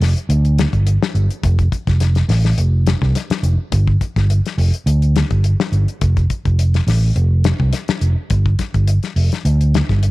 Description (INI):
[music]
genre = afrobeat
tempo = 105 BPM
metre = 4/4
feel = straight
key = unclear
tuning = A4 = 440 Hz
[part]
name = fingered electric bass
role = bass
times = 0.0-10.1 s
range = F1 to D2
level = -14 LUFS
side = equal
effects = none
[part]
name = damped 70s drum kit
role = drums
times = 0.0-10.1 s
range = hi-hat, kick drum, snare drum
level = -21 LUFS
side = left 4 dB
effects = none
[sound]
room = little or no reverb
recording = 1960s-style stereo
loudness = -14 LUFS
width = side -18 dB against mid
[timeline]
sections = 0.0-10.1 A section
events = none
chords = none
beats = 0.29 0.86 | 1.44 2.01 2.58 3.15 | 3.72 4.30 4.87 5.44 | 6.01 6.58 7.16 7.73 | 8.30 8.88 9.45 10.02